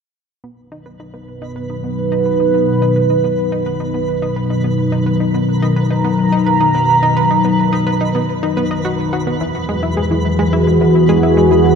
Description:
ambient, sequencer-driven space music; 107 BPM; 4/4; straight; A4 = 440 Hz
sweeping resonant pad; sustained chords; 0.4-11.8 s; E2 to A#5; -13 LUFS; equal; chorus
analog pluck; riff; 0.4-11.6 s; E3 to D#5; -23 LUFS; equal; chorus, tape echo
twinkling granular texture; texture; 1.0-11.8 s; B4; -28 LUFS; equal; built-in reverb
wet cathedral reverb, RT60 5.1 s; in a vast, echoing space; -13 LUFS; side -6 dB against mid
0.4-11.8 A section
fade-in on synth arpeggio sound 0.4-11.8; fade-in on synth texture 0.4-11.8; filter sweep on analog synth pad 0.4-11.8
0.4 B; 9.4 Eadd9
| 0.44 1.00 1.56 2.12 | 2.68 3.24 3.80 4.36 | 4.92 5.48 6.04 6.61 | 7.17 7.73 8.29 8.85 | 9.41 9.97 10.53 11.09 | 11.65

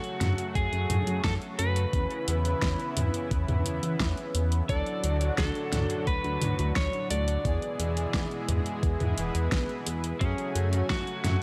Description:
synthwave; 87 BPM; 4/4; straight; F# minor; A4 = 440 Hz
lightly driven lead guitar; melody; 0.0-11.4 s; C#4 to D5; -36 LUFS; equal; delay
lush unison pad; sustained chords; 0.0-11.4 s; A2 to G#5; -38 LUFS; equal; chorus, sidechain pumping
analog synth brass; stabs; 0.0-11.4 s; E3 to B4; -39 LUFS; equal; chorus, delay
pop drum kit; drums; 0.0-11.4 s; hi-hat, snare drum, toms; -35 LUFS; equal; overdrive
chorused synth bass; bass; 0.2-11.4 s; E1 to F#2; -31 LUFS; equal
electronic kick drum; drums; 0.6-11.0 s; -33 LUFS; equal; overdrive
light reverb, digital ambience; -28 LUFS; mono
0.0-11.4 A section
0.0 F#madd9; 1.9 C#m7/E; 4.7 D; 7.5 E; 10.2 F#madd9
0.55 1.24 | 1.93 2.62 3.31 4.00 | 4.69 5.38 6.07 6.76 | 7.45 8.14 8.83 9.52 | 10.21 10.90

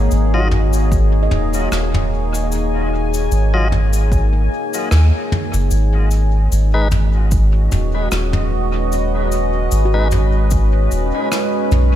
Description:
ambient dub; 75 BPM; 4/4; swing 55% on 16ths; G# minor; A4 = 440 Hz
deep dark ambient pad; sustained chords; 0.0-12.0 s; G#3 to G#5; -21 LUFS; left 1 dB; chorus, built-in reverb
soft dub sub bass; bass; 0.0-12.0 s; D#1 to D#2; -15 LUFS; equal
soft brush drum kit; drums; 0.1-11.9 s; cabasa, rim click, toms; -23 LUFS; equal; dub echo
tonewheel organ; stabs; 0.3-10.1 s; F#3 to D#5; -27 LUFS; left 2 dB; overdrive, vintage 12-bit sampler grit, dub echo
handpan; arpeggios; 0.4-12.0 s; F#4 to D#5; -30 LUFS; equal; dub echo
electronic kick drum; drums; 0.9-10.7 s; -18 LUFS; equal; overdrive
light reverb; -14 LUFS; side -12 dB against mid
0.0-5.7 A section; 5.7-12.0 B section
band accent 4.9-5.3
0.0 D#m; 5.7 G#m
0.12 0.92 1.72 | 2.52 3.32 4.12 4.92 | 5.72 6.52 7.32 8.12 | 8.92 9.72 10.52 11.32

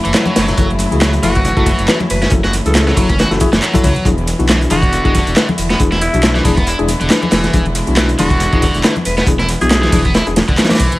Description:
breakbeat, breaks; 138 BPM; 4/4; swing 56% on 16ths; A4 = 443 Hz
dark chamber string section; sustained chords; 0.0-11.0 s; C#3 to E4; -23 LUFS; equal; sidechain pumping
cranked stack guitar; riff; 0.0-11.0 s; D3 to F#4; -20 LUFS; equal; overdrive, tape echo
garage drum kit; drums; 0.0-11.0 s; handclaps, hi-hat, ride cymbal; -23 LUFS; right 1 dB; overdrive
bright tine electric piano; stabs; 0.1-10.7 s; D4 to C#5; -21 LUFS; left 3 dB; medium tremolo, vintage 12-bit sampler grit, tape echo
dark detuned saw bass; bass; 0.1-10.9 s; E1 to C#2; -18 LUFS; equal
crunchy breakbeat drum kit; drums; 0.1-10.9 s; hi-hat, kick drum, snare drum; -15 LUFS; equal
congas; percussion; 0.3-11.0 s; -23 LUFS; left 3 dB
raspy alto saxophone; melody; 1.2-10.1 s; E4 to B4; -21 LUFS; equal; telephone sound, tape echo
light reverb; vinyl crackle; -11 LUFS; side -18 dB against mid
0.0-11.0 A section
0.0 F#m7; 4.1 E7
0.14 | 0.58 1.01 1.45 1.89 | 2.32 2.75 3.19 3.62 | 4.06 4.49 4.93 5.36 | 5.80 6.23 6.67 7.10 | 7.54 7.97 8.41 8.84 | 9.28 9.71 10.14 10.58

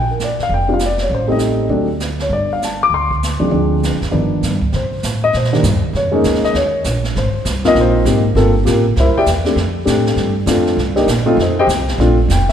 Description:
jazz piano trio; 198 BPM; 4/4; swing 63% on 8ths; G minor, C minor from 4.7 s; A4 = 442 Hz
dark baby grand piano; melody; 0.0-12.5 s; Eb3 to D6; -15 LUFS; left 1 dB
upright bass; bass; 0.0-12.5 s; F1 to C3; -18 LUFS; right 1 dB
jazz brush drum kit; drums; 0.2-12.5 s; brushed snare drum, hi-hat, kick drum, snare drum; -25 LUFS; right 3 dB
moderate concert hall reverb, RT60 2.0 s; recorded in a church or concert hall; -13 LUFS; side -9 dB against mid
0.0-4.7 A section; 4.7-12.5 B section
0.0 Bb6; 1.1 Am7b5; 1.7 D7; 2.3 G5; 3.5 Dm7b5; 4.1 G7b13; 4.7 C7(no3); 5.9 Bbm7; 6.5 Eb5; 7.1 Ab69; 8.4 Gm11; 9.0 C9; 9.6 F69; 10.8 Cm7; 11.4 F7; 12.0 Bbmaj9
0.19 0.49 0.79 | 1.09 1.40 1.70 2.00 | 2.30 2.61 2.91 3.21 | 3.51 3.82 4.12 4.42 | 4.72 5.03 5.33 5.63 | 5.93 6.24 6.54 6.84 | 7.14 7.45 7.75 8.05 | 8.35 8.66 8.96 9.26 | 9.56 9.87 10.17 10.47 | 10.78 11.08 11.38 11.69 | 11.99 12.29

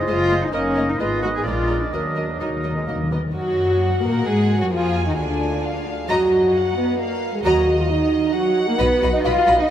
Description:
quick classical-period movement for symphony orchestra; 132 BPM; 3/4; straight; Eb minor; A4 = 440 Hz
clear oboe; second line; 0.0-3.1 s; D5 to Eb5; -30 LUFS; right 3 dB
mellow clarinet; second line; 0.0-3.1 s; Bb4 to B#4; -32 LUFS; left 3 dB
mellow bassoon; accompaniment; 0.0-3.2 s; Gb3 to Cb4; -33 LUFS; right 3 dB
dark French horn section; sustained chords; 0.0-9.7 s; Gb3 to E#5; -21 LUFS; right 1 dB
dark chamber cello section; bass; 0.0-9.6 s; D3 to Ab4; -25 LUFS; left 1 dB
dark chamber double bass section; bass; 0.0-9.6 s; F#1 to Bb2; -26 LUFS; equal
warm chamber violin section; melody; 0.1-9.7 s; D5 to Ab5; -31 LUFS; equal
warm chamber violin section; second line; 0.1-9.6 s; D4 to B5; -30 LUFS; left 1 dB
warm studio viola section; accompaniment; 0.1-9.6 s; D3 to Gb4; -28 LUFS; left 2 dB
timpani; percussion; 1.9-3.3 s; Eb3; -30 LUFS; left 2 dB
wet huge ambient reverb, RT60 8.1 s; in a vast, echoing space; -17 LUFS; side -10 dB against mid
0.0-3.4 A section; 3.4-9.7 B section
timpani fill 1.9-3.4
0.0 G#7/F#; 0.5 Ebm/Gb; 1.0 Fm7b5/Ab; 1.5 Bb7; 1.9 Ebm; 3.4 Gbadd9; 4.7 Ddim; 6.1 Ebm/Gb; 7.4 Ebm; 8.8 B
0.09 | 0.55 1.00 1.46 | 1.94 2.41 2.88 | 3.35 3.81 4.27 | 4.72 5.18 5.64 | 6.09 6.54 6.99 | 7.44 7.90 8.35 | 8.80 9.24 9.70

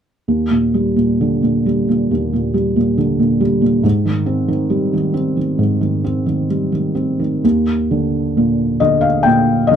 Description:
classical, lyrical solo piano; 63-70 BPM; 4/4; rubato; Eb major; A4 = 440 Hz
felt-muted upright piano; solo; 0.3-9.8 s; Eb2 to G5; -14 LUFS; equal
light reverb; dark, warm production; -14 LUFS; side -8 dB against mid
0.3-7.4 A section; 7.4-9.8 B section
0.3 Ebmaj7; 3.8 Abmaj7; 7.4 Ebmaj7
| 0.28 1.20 2.11 2.99 | 3.85 4.71 5.59 6.50 | 7.44 8.37 9.27

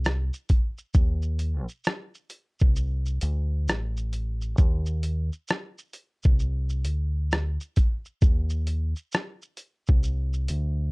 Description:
lo-fi hip hop; 66 BPM; 4/4; swing 64% on 16ths; A4 = 441 Hz
deep dub fingered electric bass; bass; 0.0-10.9 s; A1 to Eb2; -26 LUFS; equal
boom bap sampler-style drum kit; drums; 0.0-10.8 s; hi-hat, kick drum, rim click, shaker; -22 LUFS; equal
little or no reverb; dark, warm production; -24 LUFS; side -33 dB against mid
0.9-10.9 A section
0.04 | 0.95 1.85 2.76 3.67 | 4.58 5.49 6.40 7.31 | 8.22 9.13 10.04

